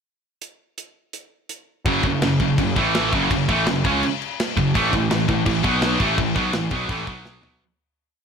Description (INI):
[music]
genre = heavy metal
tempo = 167 BPM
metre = 4/4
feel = straight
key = F# minor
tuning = A4 = 441 Hz
[part]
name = tight metal drum kit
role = drums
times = 0.4-7.5 s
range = crash cymbal, hi-hat, kick drum, snare drum, toms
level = -24 LUFS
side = left 1 dB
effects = none
[part]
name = high-gain distorted guitar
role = riff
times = 1.9-7.6 s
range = F#2 to C#4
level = -22 LUFS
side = right 10 dB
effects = distortion
[part]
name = scooped high-gain guitar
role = riff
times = 1.9-7.6 s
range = F#2 to C#4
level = -24 LUFS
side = left 13 dB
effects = distortion
[part]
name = fuzz picked electric bass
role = bass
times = 1.9-7.6 s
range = F#1 to C#2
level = -27 LUFS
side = left 1 dB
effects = overdrive
[sound]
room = small room ambience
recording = blown-out, overdriven recording, overdrive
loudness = -18 LUFS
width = side -6 dB against mid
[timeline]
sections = 0.4-1.9 pickup bar; 1.9-7.6 riff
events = fade-out 6.2-7.6; drum fill 7.3-7.6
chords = 0.4 N.C.; 1.9 F#5; 2.8 A5; 3.1 F#m; 4.8 A5; 5.6 B5; 6.0 A5; 7.1 B5